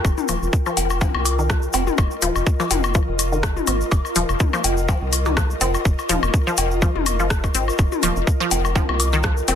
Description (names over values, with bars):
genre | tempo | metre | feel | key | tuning
minimal techno | 124 BPM | 4/4 | swing 55% on 16ths | unclear | A4 = 440 Hz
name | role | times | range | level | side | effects
rubbery square bass | bass | 0.0-9.6 s | Eb1 to C2 | -24 LUFS | equal | tube saturation, sidechain pumping
electronic kick drum | drums | 0.0-9.3 s | none | -19 LUFS | equal | overdrive
electronic woodblock, toms and cowbell | percussion | 0.0-9.6 s | none | -25 LUFS | left 6 dB | ping-pong delay
ethereal airy pad | texture | 0.0-9.6 s | F4 to G5 | -26 LUFS | equal | ensemble chorus, built-in reverb, sidechain pumping
tube shaker | percussion | 0.1-9.6 s | none | -32 LUFS | left 3 dB | none
resonant blip pluck | riff | 0.3-9.5 s | Eb3 to C4 | -26 LUFS | left 1 dB | chorus, sidechain pumping, ping-pong delay
minimal click drum kit | drums | 0.3-9.6 s | hi-hat, rim click | -23 LUFS | left 3 dB | soft clipping on snare
room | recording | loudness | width
light reverb | dense, heavily limited modern master | -17 LUFS | side -9 dB against mid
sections
0.0-9.6 A section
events
none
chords
0.0 F7(no3)